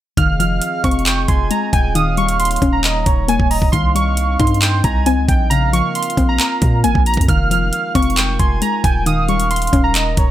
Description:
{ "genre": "hip hop, trap", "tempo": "135 BPM", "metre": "4/4", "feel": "half-time", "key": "F minor", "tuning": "A4 = 442 Hz", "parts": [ { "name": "warbly lo-fi synth keys", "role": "melody", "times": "0.2-10.3 s", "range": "G5 to F6", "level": "-20 LUFS", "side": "right 3 dB", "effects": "chorus" }, { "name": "breathy flute-like synth lead", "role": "second line", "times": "0.2-10.3 s", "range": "Db5 to Ab5", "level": "-25 LUFS", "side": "right 4 dB", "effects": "chorus, tape echo" }, { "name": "soft round pluck", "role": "accompaniment", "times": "0.2-10.3 s", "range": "Db3 to Eb4", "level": "-21 LUFS", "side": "left 5 dB", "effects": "chorus" }, { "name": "glass harmonica", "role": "sustained chords", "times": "0.2-10.3 s", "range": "G3 to Eb5", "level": "-28 LUFS", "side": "equal", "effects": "none" }, { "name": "long sustained 808-style bass", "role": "bass", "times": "0.2-10.3 s", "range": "Eb1 to Bb2", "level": "-19 LUFS", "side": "equal", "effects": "none" }, { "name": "trap drum kit", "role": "drums", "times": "0.2-10.3 s", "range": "handclaps, hi-hat, kick drum", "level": "-17 LUFS", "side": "equal", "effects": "none" } ], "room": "digital ambience", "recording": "none", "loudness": "-13 LUFS", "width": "side -13 dB against mid", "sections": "0.2-10.3 A section", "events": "none", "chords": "0.2 Fm7; 2.0 Eb7; 3.7 Cm; 5.5 Bbmadd9; 7.3 Fm7; 9.1 Eb7", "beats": "| 0.17 0.62 1.06 1.51 | 1.95 2.40 2.84 3.29 | 3.73 4.17 4.62 5.06 | 5.51 5.95 6.40 6.84 | 7.29 7.73 8.17 8.62 | 9.06 9.51 9.95" }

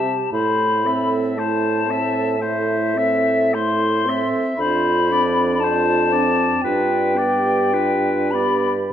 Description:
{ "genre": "classical, slow romantic movement for wind quintet", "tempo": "50-60 BPM", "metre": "4/4", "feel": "rubato", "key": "unclear", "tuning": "A4 = 441 Hz", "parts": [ { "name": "hollow concert flute", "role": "melody", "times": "0.0-8.9 s", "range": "E5 to C6", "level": "-21 LUFS", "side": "left 5 dB", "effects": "none" }, { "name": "warm oboe", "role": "second line", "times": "0.0-8.8 s", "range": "B4 to E5", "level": "-25 LUFS", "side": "left 1 dB", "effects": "none" }, { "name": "mellow clarinet", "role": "accompaniment", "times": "0.0-8.9 s", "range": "D4 to A4", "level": "-26 LUFS", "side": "right 6 dB", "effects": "none" }, { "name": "warm French horn", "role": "accompaniment", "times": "0.0-8.7 s", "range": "A3 to D4", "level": "-26 LUFS", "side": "right 1 dB", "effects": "none" }, { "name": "dark bassoon", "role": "bass", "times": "0.0-8.9 s", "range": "F2 to C3", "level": "-23 LUFS", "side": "right 2 dB", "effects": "none" } ], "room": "wet recital hall reverb, RT60 1.7 s", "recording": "dark, warm production", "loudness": "-16 LUFS", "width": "side -10 dB against mid", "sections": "0.0-8.9 A section", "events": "none", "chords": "0.3 Am; 4.6 Dm7/F; 6.6 G7", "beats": "| 0.32 1.37 2.40 3.54 | 4.58 5.61 6.64 7.73 | 8.91" }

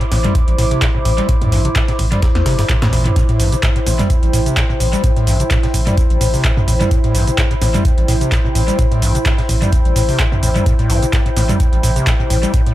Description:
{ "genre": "acid house", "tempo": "128 BPM", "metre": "4/4", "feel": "swing 55% on 16ths", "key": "A minor", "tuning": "A4 = 440 Hz", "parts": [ { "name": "overdriven acid bass", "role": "riff", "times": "0.0-12.7 s", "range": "G2 to G3", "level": "-19 LUFS", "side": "equal", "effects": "wide subtle chorus, sidechain pumping, analog delay" }, { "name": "electro analog drum machine", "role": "drums", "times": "0.0-12.7 s", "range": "cabasa, handclaps, hi-hat, snare drum, toms", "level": "-21 LUFS", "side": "right 1 dB", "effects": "dub echo" }, { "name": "warbly tape-like pad", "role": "texture", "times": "0.0-12.7 s", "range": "E4 to D6", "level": "-21 LUFS", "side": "equal", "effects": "chorus, built-in reverb, sidechain pumping" }, { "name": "saturated sub bass", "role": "bass", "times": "0.1-12.5 s", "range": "G1 to E2", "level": "-18 LUFS", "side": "equal", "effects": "tube saturation, sidechain pumping" }, { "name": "breakbeat sampler-style drum kit", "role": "drums", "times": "0.1-12.7 s", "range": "hi-hat, snare drum", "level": "-32 LUFS", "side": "equal", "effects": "none" }, { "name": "electronic kick drum", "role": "drums", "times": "0.3-12.6 s", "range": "none", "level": "-16 LUFS", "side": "equal", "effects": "none" } ], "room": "digital ambience", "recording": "echo-heavy mix", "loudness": "-12 LUFS", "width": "side -14 dB against mid", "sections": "0.0-12.7 A section", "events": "none", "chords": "0.0 Am", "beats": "0.35 0.82 | 1.29 1.76 2.23 2.69 | 3.16 3.63 4.10 4.57 | 5.04 5.51 5.97 6.44 | 6.91 7.38 7.85 8.32 | 8.79 9.26 9.72 10.19 | 10.66 11.13 11.60 12.07 | 12.54" }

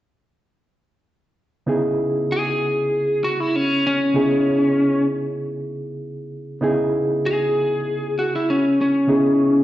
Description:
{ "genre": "blues", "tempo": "97 BPM", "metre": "4/4", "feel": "swing 53% on 16ths", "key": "C# minor", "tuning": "A4 = 440 Hz", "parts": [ { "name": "reed electric piano", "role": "accompaniment", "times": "1.7-9.6 s", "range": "C#3 to G#4", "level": "-22 LUFS", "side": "right 1 dB", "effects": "fast tremolo, plate reverb, slapback echo" }, { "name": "lightly driven lead guitar", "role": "melody", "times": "2.3-9.6 s", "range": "C#4 to G#4", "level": "-18 LUFS", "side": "left 1 dB", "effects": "plate reverb, slapback echo" } ], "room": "moderate club reverb, RT60 0.7 s", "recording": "live gig heard through the venue's PA, recital hall reverb, nothing above 8.0 kHz", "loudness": "-18 LUFS", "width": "side -14 dB against mid", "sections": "1.7-9.6 A section", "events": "lead electric guitar solo 1.7-9.6", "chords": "1.7 C#m9", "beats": "| 1.68 2.30 2.92 3.54 | 4.16 4.78 5.39 6.01 | 6.63 7.25 7.86 8.48 | 9.10" }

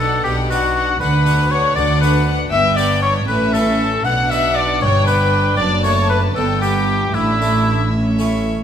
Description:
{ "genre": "classical, baroque-style concerto movement with solo episodes", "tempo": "78 BPM (dotted quarters)", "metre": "6/8", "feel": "straight", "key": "unclear", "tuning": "A4 = 442 Hz", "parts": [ { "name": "rich chamber violin section", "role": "melody", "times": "0.0-8.5 s", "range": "E5 to A5", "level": "-27 LUFS", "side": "left 4 dB", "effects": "none" }, { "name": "warm oboe", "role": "melody", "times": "0.0-7.9 s", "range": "E4 to F#5", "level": "-19 LUFS", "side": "left 2 dB", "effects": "none" }, { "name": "warm chamber violin section", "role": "second line", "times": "0.0-7.9 s", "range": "E4 to F#5", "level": "-23 LUFS", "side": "left 4 dB", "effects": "none" }, { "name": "dark chamber viola section", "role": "accompaniment", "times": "0.0-8.5 s", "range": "B3 to D4", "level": "-25 LUFS", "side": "right 2 dB", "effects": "none" }, { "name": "harpsichord", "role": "accompaniment", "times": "0.0-8.6 s", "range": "F#2 to G4", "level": "-25 LUFS", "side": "equal", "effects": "none" }, { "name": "dark chamber cello section", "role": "bass", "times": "0.0-8.5 s", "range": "F#2 to D3", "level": "-22 LUFS", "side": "right 1 dB", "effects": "none" }, { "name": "rich chamber double bass section", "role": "bass", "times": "0.0-8.5 s", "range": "F#1 to D2", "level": "-20 LUFS", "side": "right 2 dB", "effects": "none" } ], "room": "wet recital hall reverb, RT60 1.7 s", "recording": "minimal, uncompressed stereo recording", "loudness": "-14 LUFS", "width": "side -8 dB against mid", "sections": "0.0-8.6 A section", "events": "none", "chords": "0.0 Bm; 1.0 Bm/D; 2.5 G; 3.3 A; 4.1 Bm; 4.8 G; 5.6 D/F#; 6.4 G; 7.1 Asus4; 7.9 A", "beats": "0.26 | 1.02 1.77 | 2.52 3.29 | 4.06 4.82 | 5.59 6.36 | 7.15 7.93" }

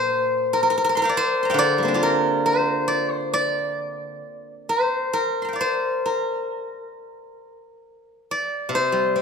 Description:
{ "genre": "chinese traditional, Chinese solo plucked strings", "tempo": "65-71 BPM", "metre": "4/4", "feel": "rubato", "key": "unclear", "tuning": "A4 = 435 Hz", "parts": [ { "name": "steel-string zither", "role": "solo", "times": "0.0-9.2 s", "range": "Bb2 to C6", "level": "-20 LUFS", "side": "left 1 dB", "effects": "none" } ], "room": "moderate recital hall reverb, RT60 1.6 s", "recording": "minimal, uncompressed stereo recording", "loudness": "-20 LUFS", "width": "side -6 dB against mid", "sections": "0.0-9.2 A section", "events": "none", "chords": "none", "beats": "0.72 1.57 2.43 | 3.31 4.21 5.12 6.03 | 6.95 7.84 8.73" }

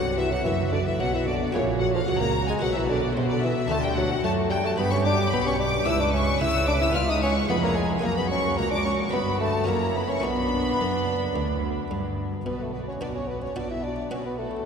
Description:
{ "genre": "classical, baroque-style concerto movement with solo episodes", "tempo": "110 BPM", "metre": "4/4", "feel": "straight", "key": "B minor from 3.7 s", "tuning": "A4 = 440 Hz", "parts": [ { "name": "mellow bassoon", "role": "melody", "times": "0.0-14.7 s", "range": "C3 to E#4", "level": "-27 LUFS", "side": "left 1 dB", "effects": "none" }, { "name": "rich chamber violin section", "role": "melody", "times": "0.0-14.6 s", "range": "C5 to E#6", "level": "-32 LUFS", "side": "left 4 dB", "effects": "none" }, { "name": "rich chamber violin section", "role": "second line", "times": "0.0-14.6 s", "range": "A4 to E#6", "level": "-33 LUFS", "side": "left 1 dB", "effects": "none" }, { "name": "buff-stop harpsichord", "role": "accompaniment", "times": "0.0-14.6 s", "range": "C#2 to E5", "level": "-35 LUFS", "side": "equal", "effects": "none" }, { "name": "rich chamber viola section", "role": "accompaniment", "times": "0.0-14.6 s", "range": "D4 to B4", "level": "-33 LUFS", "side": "right 1 dB", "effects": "none" }, { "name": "rich studio double bass section", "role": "bass", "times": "0.0-14.6 s", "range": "E#1 to B2", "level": "-30 LUFS", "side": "right 1 dB", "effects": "none" }, { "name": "warm chamber cello section", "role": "bass", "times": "0.0-14.6 s", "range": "C#2 to B3", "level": "-30 LUFS", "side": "right 2 dB", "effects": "none" } ], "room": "wet cathedral reverb, RT60 4.8 s", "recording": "minimal, uncompressed stereo recording", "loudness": "-22 LUFS", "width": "side -6 dB against mid", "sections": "0.0-12.5 A section; 12.5-14.7 B section", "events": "none", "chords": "0.0 B5; 1.5 F#/A#; 2.6 B5; 3.7 D; 4.8 G; 5.9 C#m7; 7.0 C#7; 8.0 F#; 9.1 Em/G; 9.7 F#7; 10.2 Bm", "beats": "0.46 1.00 | 1.54 2.08 2.62 3.16 | 3.70 4.24 4.78 5.33 | 5.87 6.42 6.96 7.50 | 8.05 8.59 9.14 9.69 | 10.24 10.80 11.36 11.91 | 12.47 13.02 13.56 14.11 | 14.65" }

